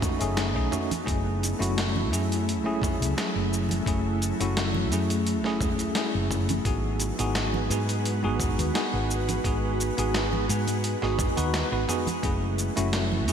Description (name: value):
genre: sunset chillout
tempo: 86 BPM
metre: 4/4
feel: swing 53% on 16ths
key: F# dorian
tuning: A4 = 439 Hz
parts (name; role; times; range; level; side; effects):
- bell-like tine electric piano; accompaniment; 0.0-13.3 s; A3 to B4; -29 LUFS; equal; fast stereo tremolo, auto-pan, ping-pong delay, shimmer reverb
- ethereal airy pad; sustained chords; 0.0-13.3 s; F#3 to B4; -32 LUFS; equal; ensemble chorus, built-in reverb, shimmer reverb
- dusty soul sampler-style drum kit; drums; 0.0-13.3 s; hi-hat, shaker, snare drum, toms; -31 LUFS; equal; small room ambience, gated reverb
- electronic kick drum; drums; 0.0-12.4 s; none; -30 LUFS; equal; small room ambience
- congas; percussion; 0.0-13.3 s; none; -37 LUFS; right 5 dB; none
- hollow-body short-scale fingered electric bass; bass; 0.2-13.3 s; F#1 to G#2; -29 LUFS; equal; none
room: moderate lush hall reverb, RT60 2.6 s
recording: bright 1980s-style digital production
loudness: -24 LUFS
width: side -8 dB against mid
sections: 0.0-13.3 A section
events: none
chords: 0.0 B7; 1.1 F#m7; 6.7 G#m7; 12.2 F#m7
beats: 0.38 | 1.08 1.77 2.47 3.17 | 3.87 4.57 5.26 5.96 | 6.66 7.36 8.05 8.75 | 9.45 10.15 10.85 11.54 | 12.24 12.94